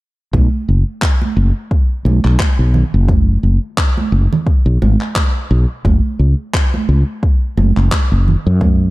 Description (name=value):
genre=sunset chillout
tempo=87 BPM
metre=4/4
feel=swing 56% on 16ths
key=unclear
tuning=A4 = 437 Hz
part: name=woody fretless electric bass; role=bass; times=0.3-8.9 s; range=F#1 to F#2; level=-12 LUFS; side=equal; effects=none
part: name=electronic kick drum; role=drums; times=0.3-8.8 s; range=none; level=-14 LUFS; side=equal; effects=overdrive
part: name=congas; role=percussion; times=0.3-8.8 s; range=none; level=-21 LUFS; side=right 4 dB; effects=none
part: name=electronic handclaps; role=drums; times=1.0-8.1 s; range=none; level=-23 LUFS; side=left 1 dB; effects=overdrive
room=digital ambience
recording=dark, warm production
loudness=-12 LUFS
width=side -19 dB against mid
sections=0.3-8.9 A section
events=none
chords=none